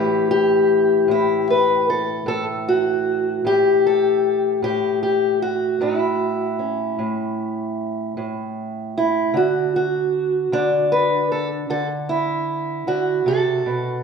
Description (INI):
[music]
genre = acoustic country blues, solo or duo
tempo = 51 BPM (dotted quarters)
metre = 12/8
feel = straight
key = A mixolydian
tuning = A4 = 441 Hz
[part]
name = fingerpicked steel-string acoustic guitar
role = solo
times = 0.0-14.0 s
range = A2 to B4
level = -18 LUFS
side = equal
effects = none
[sound]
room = moderate recital hall reverb, RT60 1.4 s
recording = recorded in a church or concert hall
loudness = -18 LUFS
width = side -5 dB against mid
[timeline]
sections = 0.0-14.0 A section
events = none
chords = 0.0 A7; 9.3 D